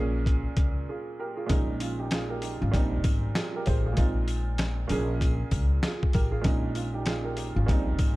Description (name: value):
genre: hip hop, boom-bap hip-hop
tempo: 97 BPM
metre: 4/4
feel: swing 60% on 16ths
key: Bb dorian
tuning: A4 = 442 Hz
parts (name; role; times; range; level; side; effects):
- warm upright piano; accompaniment; 0.0-8.2 s; Bb2 to C5; -31 LUFS; right 3 dB; cassette tape, high-pass filter, low-pass filter
- upright bass; bass; 0.0-8.2 s; Ab1 to Db2; -29 LUFS; equal; none
- trip hop sampler-style drum kit; drums; 0.3-8.2 s; hi-hat, kick drum, snare drum; -27 LUFS; equal; overdrive
- sleigh bells; percussion; 1.5-8.2 s; none; -47 LUFS; left 10 dB; none
room: small room reverb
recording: dark, warm production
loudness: -25 LUFS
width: side -19 dB against mid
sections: 0.0-8.2 A section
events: break 0.9-1.5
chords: 0.0 Bbm7; 1.5 Eb7sus4/Bb; 2.7 Abmaj7; 4.0 Bb9sus4; 4.9 Bbm7; 6.4 Eb7sus4/Bb